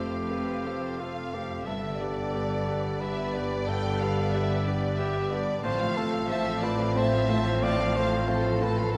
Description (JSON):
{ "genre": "cinematic, emotional film score for orchestra", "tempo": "90 BPM", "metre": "3/4", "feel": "rubato", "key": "unclear", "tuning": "A4 = 440 Hz", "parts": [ { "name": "dark cor anglais", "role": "melody", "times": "0.0-9.0 s", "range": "F4 to D5", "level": "-35 LUFS", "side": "equal", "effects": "none" }, { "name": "warm symphonic violin section", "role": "melody", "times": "0.0-9.0 s", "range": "D5 to A5", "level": "-43 LUFS", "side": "equal", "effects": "none" }, { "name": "warm symphonic violin section", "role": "second line", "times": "0.0-9.0 s", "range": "A4 to G5", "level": "-37 LUFS", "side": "equal", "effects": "none" }, { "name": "bright grand piano", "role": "accompaniment", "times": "0.0-9.0 s", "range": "F2 to A4", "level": "-36 LUFS", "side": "equal", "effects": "none" }, { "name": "rich symphonic viola section", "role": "accompaniment", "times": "0.0-9.0 s", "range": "F3 to C5", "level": "-40 LUFS", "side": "equal", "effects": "none" }, { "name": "mellow French horn section", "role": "sustained chords", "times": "0.0-9.0 s", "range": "F3 to C4", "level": "-36 LUFS", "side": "equal", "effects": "none" }, { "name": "concert harp", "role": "arpeggios", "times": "0.0-9.0 s", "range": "F2 to A5", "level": "-39 LUFS", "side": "equal", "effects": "none" }, { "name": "rich symphonic cello section", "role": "bass", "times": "0.0-9.0 s", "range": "F2 to A2", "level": "-38 LUFS", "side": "equal", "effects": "none" }, { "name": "rich symphonic double bass section", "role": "bass", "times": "0.0-9.0 s", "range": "F1 to A1", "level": "-37 LUFS", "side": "equal", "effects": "none" } ], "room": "wet scoring stage reverb, RT60 1.9 s", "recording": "none", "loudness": "-28 LUFS", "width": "mono", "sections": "0.0-9.0 A section", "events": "none", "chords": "0.0 F; 1.7 G; 5.6 F/A", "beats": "0.31 0.99 | 1.66 2.34 3.01 | 3.67 4.33 4.97 | 5.63 6.29 6.96 | 7.63 8.29 8.95" }